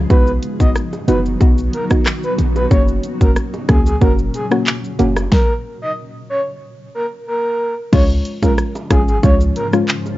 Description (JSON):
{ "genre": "dancehall", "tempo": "92 BPM", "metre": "4/4", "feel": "straight", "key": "F# major", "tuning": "A4 = 442 Hz", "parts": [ { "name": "granular cloud pad", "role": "sustained chords", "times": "0.0-10.2 s", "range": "G#2 to F#4", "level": "-26 LUFS", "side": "equal", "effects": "built-in reverb, sidechain pumping" }, { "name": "clean 808-style bass", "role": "bass", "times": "0.0-9.5 s", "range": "F#1 to C#2", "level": "-18 LUFS", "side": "equal", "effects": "none" }, { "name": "breathy flute-like synth lead", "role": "melody", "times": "0.1-9.7 s", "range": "G#4 to D#5", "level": "-22 LUFS", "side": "equal", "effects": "chorus, tape echo, plate reverb" }, { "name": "soft round pluck", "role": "accompaniment", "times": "0.1-9.9 s", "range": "G#3 to F#4", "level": "-19 LUFS", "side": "left 1 dB", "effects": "chorus, sidechain pumping, plate reverb" }, { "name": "pop drum kit", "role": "drums", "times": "0.1-10.2 s", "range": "crash cymbal, handclaps, hi-hat, kick drum, rim click, shaker, snare drum", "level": "-14 LUFS", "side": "equal", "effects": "vintage 12-bit sampler grit" }, { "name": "bongos", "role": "percussion", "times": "0.1-10.2 s", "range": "none", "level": "-31 LUFS", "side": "right 3 dB", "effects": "none" } ], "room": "light reverb", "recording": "cassette tape, nothing above 7.6 kHz", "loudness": "-14 LUFS", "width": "side -16 dB against mid", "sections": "0.0-7.9 A section; 7.9-10.2 B section", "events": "stop 5.3-7.9", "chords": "0.1 B; 2.7 F#; 7.9 C#" }